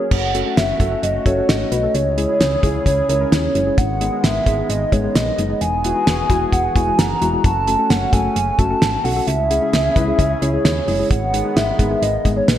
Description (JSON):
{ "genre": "synth-pop", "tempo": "131 BPM", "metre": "4/4", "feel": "straight", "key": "unclear", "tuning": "A4 = 440 Hz", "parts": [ { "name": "hollow clarinet-like synth lead", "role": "melody", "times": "0.0-12.6 s", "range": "B4 to A#5", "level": "-20 LUFS", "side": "right 1 dB", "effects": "chorus, digital delay" }, { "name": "warm analog pad", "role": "sustained chords", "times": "0.0-12.6 s", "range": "C#3 to A#4", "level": "-27 LUFS", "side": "equal", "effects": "chorus" }, { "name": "solid FM bass", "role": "bass", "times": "0.1-12.6 s", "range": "E1 to D#2", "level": "-22 LUFS", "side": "equal", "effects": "none" }, { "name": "damped 70s drum kit", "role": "drums", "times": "0.1-12.6 s", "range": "crash cymbal, hi-hat, kick drum, snare drum", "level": "-19 LUFS", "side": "right 1 dB", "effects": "gated reverb" }, { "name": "muted felt-like synth keys", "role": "accompaniment", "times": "0.3-12.5 s", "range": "G#3 to B4", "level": "-24 LUFS", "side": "left 3 dB", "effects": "chorus" } ], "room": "moderate lush hall reverb, RT60 1.9 s, studio ambience", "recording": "bright 1980s-style digital production", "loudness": "-15 LUFS", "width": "side -11 dB against mid", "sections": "0.1-12.6 A section", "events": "none", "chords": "0.1 F#m; 1.9 C#m; 3.8 G#m; 5.6 Eadd9; 7.4 F#m; 9.3 C#m; 11.1 G#m" }